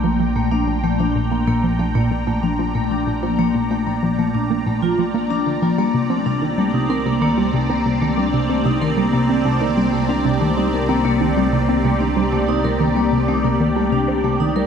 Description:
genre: ambient, sequencer-driven space music.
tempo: 94 BPM.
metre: 4/4.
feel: straight.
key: unclear.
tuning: A4 = 440 Hz.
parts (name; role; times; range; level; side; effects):
lush unison pad; sustained chords; 0.0-14.7 s; C4 to C6; -24 LUFS; right 1 dB; chorus, phaser.
vibraphone with medium mallets; arpeggios; 0.0-14.7 s; A3 to Bb4; -20 LUFS; moving between left 6 dB and right 1 dB; auto-pan, tape echo.
tight sequenced synth; riff; 0.0-14.7 s; Bb2 to D4; -21 LUFS; right 1 dB; chorus, tape echo.
fat analog bass; bass; 0.0-14.7 s; Bb1 to C2; -26 LUFS; right 1 dB; none.
room: wet cathedral reverb, RT60 6.7 s.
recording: in a vast, echoing space.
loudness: -16 LUFS.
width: side -7 dB against mid.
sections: 0.0-14.7 A section.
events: fade-in on analog synth pad 0.0-14.7; filter sweep on synth arpeggio sound 0.0-14.7.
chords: 0.0 Bb6; 5.8 Cm7.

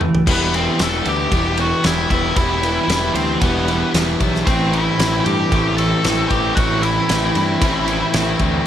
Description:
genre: quiet-loud alternative rock.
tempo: 114 BPM.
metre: 4/4.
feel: straight.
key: E minor.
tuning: A4 = 440 Hz.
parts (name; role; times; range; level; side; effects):
overdriven semi-hollow guitar; riff; 0.0-8.7 s; A2 to E4; -21 LUFS; left 4 dB; none.
overdriven semi-hollow guitar; riff; 0.0-8.7 s; A2 to E4; -22 LUFS; right 4 dB; tremolo.
loose indie drum kit; drums; 0.0-8.5 s; crash cymbal, kick drum, ride cymbal, snare drum, toms; -21 LUFS; equal; none.
octave-fuzz lead guitar; melody; 0.3-8.4 s; B3 to A5; -21 LUFS; left 1 dB; distortion, plate reverb, analog delay.
fuzz picked electric bass; bass; 0.3-8.6 s; E1 to G2; -23 LUFS; equal; overdrive.
room: moderate studio reverb, RT60 0.6 s.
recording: none.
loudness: -15 LUFS.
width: side -10 dB against mid.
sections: 0.3-8.7 A section.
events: break 0.0; drum fill 0.0.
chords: 0.3 Em; 4.5 Am.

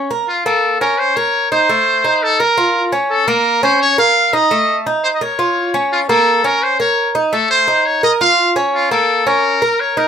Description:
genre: latin.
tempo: 170 BPM.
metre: 4/4.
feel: straight.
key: Bb minor.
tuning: A4 = 440 Hz.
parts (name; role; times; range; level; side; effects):
Cuban tres; arpeggios; 0.0-10.1 s; A3 to Bb4; -16 LUFS; right 1 dB; none.
trumpet with metal mute; melody; 0.3-10.1 s; F4 to F5; -14 LUFS; left 1 dB; none.
room: moderate studio reverb, RT60 0.6 s.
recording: none.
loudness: -12 LUFS.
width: side -8 dB against mid.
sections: 0.3-10.1 A section.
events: none.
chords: 0.3 Bbm; 1.0 Eb5; 1.7 Adim; 2.4 Bbm; 3.8 Eb5; 4.5 A(b5, no3); 5.2 Bbm; 6.6 Eb5; 7.3 Adim; 8.0 Bbm; 9.4 Eb5.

